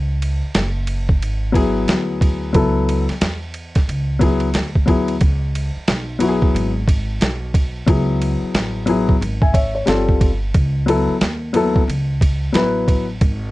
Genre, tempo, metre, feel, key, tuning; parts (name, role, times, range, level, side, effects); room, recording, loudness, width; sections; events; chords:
hip hop, jazz-hop; 90 BPM; 4/4; swing 62% on 16ths; A4 = 440 Hz
upright bass; bass; 0.0-13.5 s; F#1 to E2; -22 LUFS; equal
boom bap sampler-style drum kit; drums; 0.2-13.4 s; hi-hat, kick drum, ride cymbal, snare drum; -18 LUFS; right 1 dB
dark concert grand piano; accompaniment; 1.5-13.1 s; F#3 to G#5; -18 LUFS; left 2 dB
light reverb; dark, warm production; -16 LUFS; side -18 dB against mid
0.0-13.5 A section
0.0 F#7sus2; 5.2 C#m7; 9.9 Gsus2; 10.5 F#m7/C#